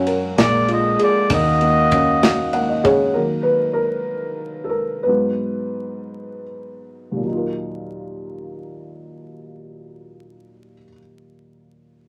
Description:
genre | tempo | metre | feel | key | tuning
six-eight pop ballad | 50-65 BPM (dotted quarters) | 6/8 | straight | Eb minor | A4 = 440 Hz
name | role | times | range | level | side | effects
felt-muted upright piano | accompaniment | 0.0-12.1 s | Eb2 to Gb5 | -23 LUFS | equal | none
mellow brass ensemble | sustained chords | 0.0-3.1 s | D3 to F5 | -27 LUFS | equal | none
vintage muted fingered electric bass | bass | 0.0-3.1 s | Bb1 to Gb2 | -29 LUFS | equal | none
modern studio drum kit | drums | 0.1-3.0 s | kick drum, ride cymbal, snare drum | -24 LUFS | equal | none
mellow flugelhorn | melody | 0.4-2.8 s | D5 to Eb5 | -21 LUFS | equal | none
room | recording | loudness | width
wet studio ambience, RT60 0.5 s | vinyl crackle | -19 LUFS | mono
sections
0.0-3.2 A section; 3.2-7.2 B section; 7.2-12.0 C section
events
felt piano fill 2.2-3.2; slowing down 3.2-7.2; felt piano solo 3.2-7.2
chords
0.4 Bb7; 1.3 Ebm7; 3.2 Ebm; 5.1 Abm7; 7.2 Ebmadd9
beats
0.38 | 1.30 2.23 | 3.15 4.09 | 5.07 6.11 | 7.24 8.44 | 9.64 10.84

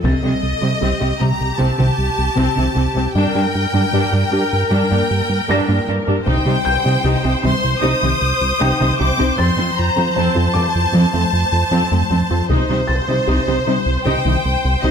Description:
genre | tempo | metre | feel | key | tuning
cinematic, hybrid orchestral and electronic film score | 77 BPM | 4/4 | straight | C dorian | A4 = 439 Hz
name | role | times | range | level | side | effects
clear symphonic violin section | melody | 0.0-14.9 s | C5 to Eb6 | -22 LUFS | left 3 dB | none
rich symphonic viola section | accompaniment | 0.0-14.9 s | C4 to C5 | -21 LUFS | equal | none
woody wave-folded pluck | arpeggios | 0.0-14.9 s | C3 to G4 | -25 LUFS | left 4 dB | chorus, tape echo
fat analog bass | riff | 0.0-14.9 s | C2 to G3 | -20 LUFS | right 1 dB | none
warm symphonic cello section | bass | 0.0-14.9 s | F2 to C3 | -21 LUFS | right 2 dB | none
taiko ensemble | drums | 0.0-1.6, 6.3-7.8, 12.5-14.0 s | none | -24 LUFS | left 1 dB | none
felt-muted upright piano | texture | 0.0-14.9 s | G5 to Bb6 | -29 LUFS | left 2 dB | tape echo
room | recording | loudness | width
moderate scoring stage reverb, RT60 1.9 s | none | -14 LUFS | side -7 dB against mid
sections
0.0-14.9 A section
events
none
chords
0.0 Cm; 3.2 Gm; 6.3 Cm; 9.4 F; 12.5 Cm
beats
| 0.04 0.82 1.60 2.38 | 3.15 3.93 4.71 5.49 | 6.27 7.05 7.83 8.61 | 9.39 10.17 10.95 11.73 | 12.51 13.28 14.06 14.84

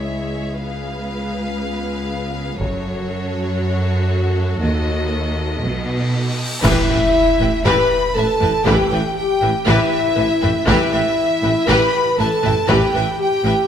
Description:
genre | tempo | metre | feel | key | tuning
cinematic, epic orchestral film score | 119 BPM | 4/4 | straight | unclear | A4 = 440 Hz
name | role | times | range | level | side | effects
clear chamber violin section | melody | 0.0-13.7 s | C#5 to B5 | -26 LUFS | left 3 dB | none
warm symphonic violin section | second line | 0.0-13.5 s | G4 to G5 | -27 LUFS | left 2 dB | none
rich chamber viola section | accompaniment | 0.0-13.5 s | E3 to B4 | -26 LUFS | equal | none
mellow French horn section | sustained chords | 0.0-13.7 s | G#3 to B4 | -21 LUFS | left 2 dB | none
rich studio cello section | bass | 0.0-13.5 s | C#2 to B2 | -23 LUFS | right 1 dB | none
rich symphonic double bass section | bass | 2.6-13.5 s | F#1 to D#2 | -26 LUFS | right 2 dB | none
taiko ensemble | drums | 2.6-3.6, 6.6-13.2 s | none | -23 LUFS | equal | none
cymbal swell and impact | sound effects | 5.8-8.7 s | none | -28 LUFS | equal | none
mellow hollow small flute group | second line | 6.6-13.7 s | E5 to B5 | -25 LUFS | right 2 dB | none
mellow tuba | bass | 6.6-13.5 s | A1 | -26 LUFS | right 3 dB | none
clash cymbals and concert bass drum | percussion | 6.6-7.6 s | none | -25 LUFS | equal | none
room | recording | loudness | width
moderate scoring stage reverb, RT60 1.9 s | none | -16 LUFS | side -8 dB against mid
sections
0.0-6.6 A section; 6.6-13.7 B section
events
cymbal swell 5.8-6.6; band accent 6.6-7.1; impact 6.6-8.7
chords
0.0 C#m; 0.6 C#7; 2.6 F#m; 4.6 D#dim; 5.6 B7; 6.6 Em/A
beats
0.09 | 0.59 1.10 1.60 2.10 | 2.61 3.11 3.62 4.12 | 4.63 5.13 5.63 6.14 | 6.64 7.15 7.65 8.15 | 8.66 9.16 9.67 10.17 | 10.68 11.18 11.69 12.19 | 12.69 13.20

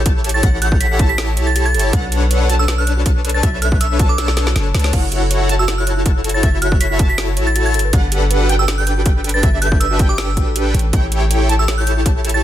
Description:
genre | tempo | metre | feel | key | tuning
future bass | 160 BPM | 4/4 | half-time | unclear | A4 = 439 Hz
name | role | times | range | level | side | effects
soft round pluck | arpeggios | 0.0-12.4 s | E4 to C#5 | -28 LUFS | right 2 dB | wide subtle chorus, sidechain pumping, ping-pong delay
wide unison pluck | arpeggios | 0.0-12.4 s | E5 to A5 | -29 LUFS | right 2 dB | cassette tape, sidechain pumping, ping-pong delay
big bright polysynth | riff | 0.0-12.4 s | D4 to A5 | -21 LUFS | left 2 dB | cassette tape, sidechain pumping, ping-pong delay
warm 808-style bass | bass | 0.0-12.4 s | F#1 to C#2 | -18 LUFS | equal | sidechain pumping
electronic kick drum | drums | 0.1-12.1 s | none | -15 LUFS | equal | none
trap drum kit | drums | 0.1-12.4 s | crash cymbal, hi-hat, snare drum | -23 LUFS | right 1 dB | none
glassy synth bell | melody | 0.3-12.4 s | D6 to B6 | -22 LUFS | right 2 dB | chorus, sidechain pumping, digital delay
room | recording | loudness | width
little or no reverb | dense, heavily limited modern master | -13 LUFS | side -12 dB against mid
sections
0.0-12.4 A section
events
drum fill 4.2-4.9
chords
0.0 A7; 1.9 Bm9; 4.9 F#m7; 7.7 Gmaj9; 10.7 A7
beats
0.06 | 0.43 0.81 1.18 1.56 | 1.93 2.31 2.68 3.06 | 3.43 3.81 4.18 4.56 | 4.93 5.31 5.68 6.06 | 6.43 6.81 7.18 7.56 | 7.93 8.31 8.68 9.06 | 9.43 9.81 10.18 10.56 | 10.93 11.31 11.68 12.06

